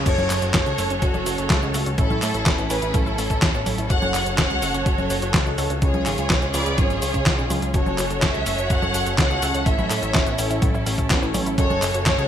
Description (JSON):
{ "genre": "italo disco", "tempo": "125 BPM", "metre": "4/4", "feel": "straight", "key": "F# minor", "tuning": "A4 = 436 Hz", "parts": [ { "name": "rich studio string section", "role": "sustained chords", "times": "0.0-12.3 s", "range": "F#3 to C#5", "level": "-30 LUFS", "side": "right 1 dB", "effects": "none" }, { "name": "analog pluck", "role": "arpeggios", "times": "0.0-12.2 s", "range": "C#3 to E4", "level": "-32 LUFS", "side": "right 4 dB", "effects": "chorus, ping-pong delay" }, { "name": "mellow synth brass", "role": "stabs", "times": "0.0-12.3 s", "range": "C#4 to C#5", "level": "-29 LUFS", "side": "left 1 dB", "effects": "chorus, phaser" }, { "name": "fat analog bass", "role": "bass", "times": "0.0-12.3 s", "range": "E1 to A2", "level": "-26 LUFS", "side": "equal", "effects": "none" }, { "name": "warm symphonic violin section", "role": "melody", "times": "0.1-12.3 s", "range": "E4 to F#5", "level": "-26 LUFS", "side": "equal", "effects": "ping-pong delay" }, { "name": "clean 12-bit digital drum machine", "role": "drums", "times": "0.1-12.3 s", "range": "cabasa, congas, crash cymbal, handclaps, hi-hat, snare drum", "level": "-24 LUFS", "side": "equal", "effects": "gated reverb" }, { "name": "electronic kick drum", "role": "drums", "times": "0.1-12.2 s", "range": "none", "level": "-22 LUFS", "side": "equal", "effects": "none" } ], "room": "light reverb", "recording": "bright 1980s-style digital production", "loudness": "-18 LUFS", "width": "side -10 dB against mid", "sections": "0.0-12.3 A section", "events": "none", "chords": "0.1 F#m; 2.0 A; 3.9 F#m; 5.8 C#; 7.7 F#m; 9.7 A; 11.6 F#m", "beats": "| 0.06 0.54 1.02 1.50 | 1.98 2.46 2.94 3.42 | 3.90 4.38 4.86 5.34 | 5.82 6.30 6.78 7.26 | 7.74 8.22 8.70 9.18 | 9.66 10.14 10.62 11.10 | 11.58 12.06" }